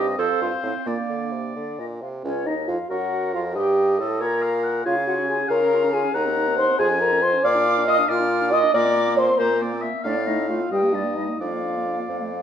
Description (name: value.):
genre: quick classical-period movement for wind quintet.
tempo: 86-93 BPM (dotted quarters).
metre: 6/8.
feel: straight.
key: Bb minor, Bb major from 7.4 s.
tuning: A4 = 441 Hz.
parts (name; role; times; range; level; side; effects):
concert flute; melody; 0.0-12.4 s; Db5 to F6; -27 LUFS; left 3 dB; none.
clear oboe; second line; 0.0-12.4 s; Bb4 to Ab5; -27 LUFS; left 2 dB; none.
mellow French horn; accompaniment; 0.0-12.4 s; C4 to Eb5; -22 LUFS; left 1 dB; none.
warm clarinet; accompaniment; 0.0-12.4 s; G3 to Bb4; -29 LUFS; right 7 dB; none.
clear bassoon; bass; 0.0-12.4 s; Db2 to D3; -28 LUFS; right 1 dB; none.
room: wet stone room reverb, RT60 1.1 s.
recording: none.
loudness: -19 LUFS.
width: side -9 dB against mid.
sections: 0.0-2.2 A section; 2.2-12.4 B section.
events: none.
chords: 0.2 F; 0.9 Bb; 2.2 Bbm/Db; 3.6 Gsus2; 4.2 Bbm; 4.9 Db; 6.1 Cdim/Eb; 6.8 Db/F; 7.4 Bb; 8.7 Bbadd9; 10.0 F/A; 10.7 Eb/G; 11.4 Bb/F.